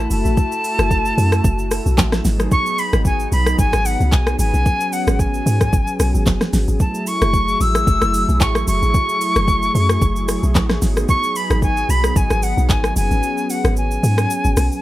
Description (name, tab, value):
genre	amapiano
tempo	112 BPM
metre	4/4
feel	swing 55% on 16ths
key	unclear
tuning	A4 = 440 Hz
part	jazz flute	melody	0.0-14.8 s	F#5 to E6	-21 LUFS	left 1 dB	none
part	warm analog pad	sustained chords	0.0-14.8 s	F#3 to A4	-24 LUFS	equal	chorus
part	deep log drum bass	bass	0.0-14.7 s	F#1 to G#2	-18 LUFS	equal	none
part	smooth R&B drum kit	drums	0.1-14.8 s	handclaps, hi-hat, kick drum, rim click, shaker, snare drum	-20 LUFS	equal	overdrive
room	light reverb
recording	none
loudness	-15 LUFS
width	side -15 dB against mid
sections	0.0-14.8 A section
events	kick muted 13.2-14.8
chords	0.0 F#m7; 2.2 G#m7; 6.8 F#m9; 10.8 G#m7